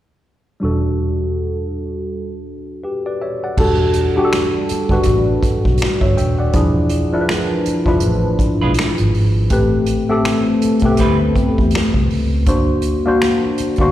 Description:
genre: R&B, neo-soul.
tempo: 81 BPM.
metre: 4/4.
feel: swing 57% on 16ths.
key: unclear.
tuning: A4 = 440 Hz.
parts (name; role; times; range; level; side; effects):
barky tine electric piano; accompaniment; 0.6-13.9 s; F3 to G5; -17 LUFS; left 1 dB; overdrive, phaser, slapback echo.
vintage muted fingered electric bass; bass; 0.6-13.9 s; D#1 to E2; -19 LUFS; equal; none.
unplugged drum kit; drums; 3.6-13.9 s; crash cymbal, finger snaps, hi-hat, kick drum, snare drum; -20 LUFS; right 1 dB; none.
semi-hollow electric guitar; second line; 8.6-11.2 s; G3 to B4; -25 LUFS; right 4 dB; slapback echo.
room: small room ambience.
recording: live gig heard through the venue's PA, recital hall reverb.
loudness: -14 LUFS.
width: side -13 dB against mid.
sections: 0.6-3.6 A section; 3.6-13.9 B section.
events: none.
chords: 0.6 Em11; 6.5 E7b9; 9.5 Am9; 12.5 D7b13.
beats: | 0.62 1.36 2.10 2.84 | 3.58 4.32 5.06 5.80 | 6.54 7.28 8.03 8.77 | 9.51 10.25 10.99 11.73 | 12.47 13.21.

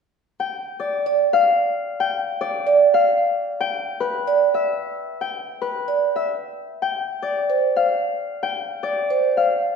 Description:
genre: classical, minimalist pattern music.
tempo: 112 BPM.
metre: 3/4.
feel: straight.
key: unclear.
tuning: A4 = 437 Hz.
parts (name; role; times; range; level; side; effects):
Celtic harp; melody; 0.4-9.8 s; B4 to G5; -21 LUFS; left 4 dB; none.
vibraphone with soft mallets; arpeggios; 1.1-9.3 s; C5 to D5; -19 LUFS; right 6 dB; none.
room: wet recital hall reverb, RT60 1.3 s.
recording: recorded in a church or concert hall.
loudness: -19 LUFS.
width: side -6 dB against mid.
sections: 0.0-9.8 A section.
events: none.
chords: 0.0 G5; 6.3 Csus2.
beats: 0.40 0.93 | 1.47 2.00 2.54 | 3.08 3.61 4.15 | 4.68 5.22 5.75 | 6.29 6.83 7.36 | 7.90 8.43 8.97 | 9.50.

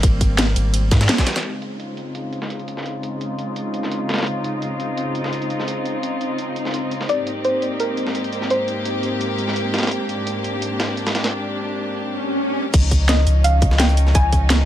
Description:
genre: liquid drum and bass.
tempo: 170 BPM.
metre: 4/4.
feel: straight.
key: Db lydian.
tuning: A4 = 439 Hz.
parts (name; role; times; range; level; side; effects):
soft round pluck; melody; 0.0-1.1, 7.1-14.7 s; Bb4 to Ab5; -24 LUFS; equal; chorus, dub echo.
warm chamber string section; sustained chords; 0.0-14.7 s; Ab2 to G4; -24 LUFS; left 1 dB; low-pass filter.
warm sub bass; bass; 0.0-1.1, 12.7-14.7 s; Ab1 to Ab2; -16 LUFS; equal; tube saturation.
drum and bass drum kit; drums; 0.0-1.3, 12.7-14.6 s; crash cymbal, hi-hat, ride cymbal, snare drum; -22 LUFS; equal; none.
dusty soul sampler-style drum kit; drums; 0.0-14.6 s; hi-hat, snare drum; -26 LUFS; right 1 dB; overdrive, high-pass filter on hats, low-pass filter on hats, high-pass filter on snare, low-pass filter on snare.
electronic kick drum; drums; 0.0-1.2, 12.7-14.4 s; none; -17 LUFS; equal; none.
swell; sound effects; 12.1-12.7 s; none; -26 LUFS; equal; none.
room: light reverb.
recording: none.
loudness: -18 LUFS.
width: side -11 dB against mid.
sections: 0.0-1.4 A section; 1.4-12.7 B section; 12.7-14.7 A section.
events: drop 0.0-1.4, 12.7-14.7; filter sweep on string section 1.4-12.7; swell 12.1-12.7.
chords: 0.0 Abmaj9; 1.4 Dbmaj9; 7.1 Abmaj9; 12.7 Dbadd9.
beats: | 0.03 0.39 0.74 1.09 | 1.44 1.80 2.15 2.50 | 2.85 3.21 3.56 3.91 | 4.27 4.62 4.97 5.33 | 5.68 6.03 6.38 6.74 | 7.09 7.44 7.80 8.15 | 8.50 8.86 9.21 9.56 | 9.91 10.27 10.62 10.97 | 11.33 11.68 12.03 12.38 | 12.74 13.09 13.44 13.80 | 14.15 14.50.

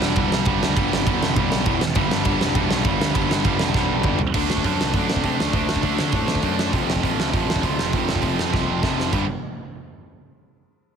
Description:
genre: punk rock.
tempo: 201 BPM.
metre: 4/4.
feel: straight.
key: unclear.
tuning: A4 = 439 Hz.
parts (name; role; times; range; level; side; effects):
overdriven electric guitar; riff; 0.0-9.2 s; E2 to D4; -25 LUFS; left 12 dB; none.
tight distorted guitar; riff; 0.0-9.2 s; E2 to D4; -24 LUFS; right 16 dB; distortion.
fuzz picked electric bass; bass; 0.0-9.3 s; E1 to D3; -27 LUFS; right 2 dB; overdrive.
big rock drum kit; drums; 0.0-9.2 s; crash cymbal, hi-hat, kick drum, ride cymbal, snare drum, toms; -23 LUFS; right 2 dB; none.
room: little or no reverb.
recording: heavily compressed radio sound.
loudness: -18 LUFS.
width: side -7 dB against mid.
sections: 0.0-4.3 A section; 4.3-9.1 B section; 9.1-10.3 C section.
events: drum fill 3.8-4.3, 8.5-9.1.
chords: 0.0 G; 1.7 E5; 1.8 N.C.; 2.0 G5; 4.2 N.C.; 4.3 D; 6.7 F5; 9.1 G5.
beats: 0.17 0.47 | 0.77 1.07 1.37 1.67 | 1.96 2.26 2.56 2.86 | 3.15 3.45 3.75 4.05 | 4.34 4.64 4.94 5.24 | 5.54 5.84 6.14 6.43 | 6.73 7.03 7.33 7.63 | 7.93 8.23 8.53 8.83 | 9.13.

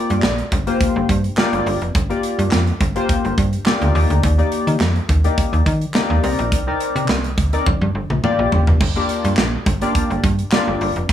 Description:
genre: early-eighties boogie funk.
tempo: 105 BPM.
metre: 4/4.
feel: straight.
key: G minor.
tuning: A4 = 440 Hz.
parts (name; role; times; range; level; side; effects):
chorused polysynth; accompaniment; 0.0-10.9 s; Bb3 to D5; -21 LUFS; left 3 dB; none.
slap-like FM bass; bass; 0.1-11.1 s; F1 to Eb3; -19 LUFS; right 1 dB; none.
modern studio drum kit; drums; 0.1-11.1 s; crash cymbal, handclaps, hi-hat, kick drum, snare drum, toms; -20 LUFS; right 1 dB; gated reverb.
room: light reverb, small room ambience.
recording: none.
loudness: -15 LUFS.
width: side -10 dB against mid.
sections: 0.0-8.8 A section; 8.8-11.1 A section.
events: drum fill 7.7-8.8.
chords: 0.0 Gm7; 4.0 Ebmaj7; 6.2 Cm9; 7.7 Gm7.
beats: 0.23 0.81 1.38 | 1.95 2.52 3.09 3.66 | 4.24 4.81 5.38 5.95 | 6.52 7.09 7.66 8.23 | 8.81 9.38 9.95 10.52 | 11.09.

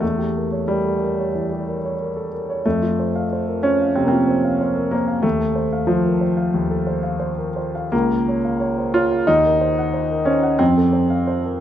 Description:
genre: classical, romantic character piece for solo piano.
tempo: 91 BPM.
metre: 4/4.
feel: rubato.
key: unclear.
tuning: A4 = 440 Hz.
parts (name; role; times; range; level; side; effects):
warm grand piano; solo; 0.0-11.6 s; Db2 to Gb5; -17 LUFS; equal; none.
room: moderate recital hall reverb, RT60 1.5 s.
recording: none.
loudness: -17 LUFS.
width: side -10 dB against mid.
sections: 0.0-11.6 A section.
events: none.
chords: 0.0 Edim7; 2.7 F; 5.2 F7/Eb; 7.9 Bbm/Db; 9.3 Cm7b5/Eb; 10.6 F.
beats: | 0.01 0.68 1.34 1.99 | 2.65 3.31 3.96 4.61 | 5.24 5.88 6.54 7.20 | 7.92 8.60 9.28 9.94 | 10.60 11.28.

